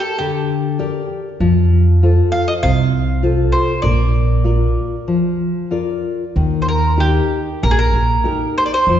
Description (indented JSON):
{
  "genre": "fado-style ballad",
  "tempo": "97 BPM",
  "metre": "4/4",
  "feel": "rubato",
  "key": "Bb major",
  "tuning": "A4 = 440 Hz",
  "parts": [
    { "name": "mandolin", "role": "melody", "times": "0.0-9.0 s", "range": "G4 to F5", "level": "-19 LUFS", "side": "right 1 dB", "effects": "none" },
    { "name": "nylon-string guitar", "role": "accompaniment", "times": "0.0-9.0 s", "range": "C3 to D5", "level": "-19 LUFS", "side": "left 3 dB", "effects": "none" },
    { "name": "upright bass", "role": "bass", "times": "1.4-9.0 s", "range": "Bb1 to F2", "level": "-15 LUFS", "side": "right 1 dB", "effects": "none" }
  ],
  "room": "wet concert hall reverb, RT60 1.7 s",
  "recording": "heard from further back in the room, nothing above 7.7 kHz",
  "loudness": "-14 LUFS",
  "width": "side -10 dB against mid",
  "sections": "0.0-6.4 A section; 6.4-9.0 B section",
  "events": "break 5.1-6.4",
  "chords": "0.0 Gm; 1.4 F; 3.8 Bb; 6.4 Eb"
}